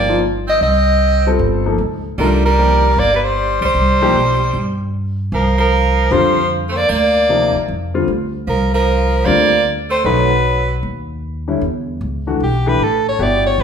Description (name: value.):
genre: jazz.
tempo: 152 BPM.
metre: 4/4.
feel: swing 65% on 8ths.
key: C dorian.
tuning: A4 = 440 Hz.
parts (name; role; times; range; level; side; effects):
warm soprano saxophone; melody; 0.0-13.6 s; G4 to Eb5; -16 LUFS; right 1 dB; none.
edgy tenor saxophone; second line; 0.0-10.8 s; F3 to C4; -22 LUFS; right 3 dB; none.
warm grand piano; accompaniment; 0.0-13.6 s; C3 to A4; -19 LUFS; left 3 dB; none.
upright bass; bass; 0.0-13.6 s; G1 to G2; -18 LUFS; equal; none.
room: wet large studio reverb, RT60 1.2 s.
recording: band playing live in one room.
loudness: -13 LUFS.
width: side -7 dB against mid.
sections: 0.0-11.6 A section; 11.6-13.6 B section.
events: soprano saxophone solo 11.6-13.6.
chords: 0.0 Cm11; 5.3 Bbadd9/C; 10.0 B7; 11.6 Em7.